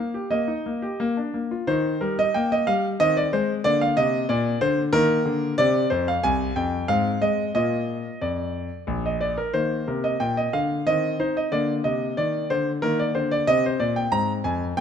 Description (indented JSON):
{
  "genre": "classical-period piano sonatina",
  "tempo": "92 BPM",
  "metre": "3/4",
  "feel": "straight",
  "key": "Eb major",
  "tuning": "A4 = 440 Hz",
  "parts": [
    { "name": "clear concert grand piano", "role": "solo", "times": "0.0-14.8 s", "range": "Bb1 to Bb5", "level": "-21 LUFS", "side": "equal", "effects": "none" }
  ],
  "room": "moderate recital hall reverb, RT60 1.6 s",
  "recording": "close, detailed microphones",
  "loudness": "-21 LUFS",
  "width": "side -8 dB against mid",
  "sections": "0.0-1.7 A section; 1.7-14.8 B section",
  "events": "none",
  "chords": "0.0 Eb/Bb; 1.0 Bb; 1.7 Eb; 3.0 Ab/Eb; 3.6 Bb; 4.9 Eb5; 5.6 Fm69; 6.9 Fm/Ab; 7.5 Bb; 9.5 Eb5; 10.9 Cm/Eb; 11.5 Bb; 12.8 Eb5; 13.5 Bb69; 14.1 Fm/Ab"
}